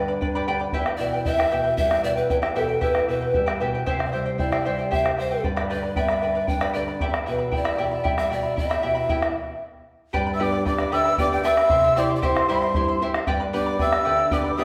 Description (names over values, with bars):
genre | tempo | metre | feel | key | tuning
andean folk, Andean ensemble | 77 BPM (dotted quarters) | 6/8 | straight | E minor | A4 = 440 Hz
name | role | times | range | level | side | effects
breathy mellow pan flute | melody | 0.0-14.6 s | A4 to G5 | -26 LUFS | equal | none
charango | accompaniment | 0.0-14.6 s | E4 to C6 | -30 LUFS | equal | none
nylon-string guitar | accompaniment | 0.0-14.6 s | E2 to G4 | -31 LUFS | equal | none
bombo | percussion | 0.2-14.4 s | none | -30 LUFS | equal | none
breathy bright large quena | second line | 10.3-14.6 s | G5 to E6 | -27 LUFS | equal | none
room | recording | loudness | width
wet large studio reverb, RT60 1.4 s | band playing live in one room | -23 LUFS | mono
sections
0.0-10.1 A section; 10.1-14.6 B section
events
stop 9.4-10.1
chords
0.0 G; 0.7 Em; 3.9 C; 5.4 G; 7.0 Em; 10.1 G; 11.7 C; 13.3 G